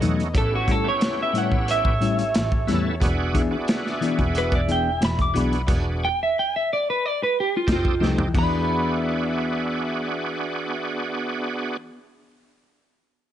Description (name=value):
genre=straight-eighth soul blues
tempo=90 BPM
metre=4/4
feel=straight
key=E mixolydian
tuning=A4 = 440 Hz
part: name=bright tonewheel organ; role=accompaniment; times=0.0-11.8 s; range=A3 to A4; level=-28 LUFS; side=right 3 dB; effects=slow rotary speaker, overdrive, chorus vibrato
part: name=warm horn section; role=sustained chords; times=0.0-11.8 s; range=C#4 to G5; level=-35 LUFS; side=left 2 dB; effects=none
part: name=mellow electric guitar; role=stabs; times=0.0-12.1 s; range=A2 to G#4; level=-27 LUFS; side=left 4 dB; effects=none
part: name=warm double bass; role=bass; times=0.0-11.8 s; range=E1 to E2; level=-26 LUFS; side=equal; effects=none
part: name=crunchy breakbeat drum kit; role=drums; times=0.0-8.5 s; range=crash cymbal, hi-hat, kick drum, snare drum, toms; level=-24 LUFS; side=equal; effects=none
part: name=electric guitar at the edge of break-up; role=melody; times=0.4-12.0 s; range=F4 to D6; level=-24 LUFS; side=right 1 dB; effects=wide subtle chorus
room=light reverb, small room ambience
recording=nothing above 10.6 kHz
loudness=-20 LUFS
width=side -10 dB against mid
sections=0.0-8.3 A section; 8.3-11.0 B section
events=drum fill 8.0-8.3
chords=0.3 A7; 3.0 E7; 7.7 F9; 8.3 E7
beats=| 0.34 1.01 1.68 2.34 | 3.01 3.68 4.34 5.01 | 5.68 6.34 7.01 7.68 | 8.35 9.01 9.68 10.34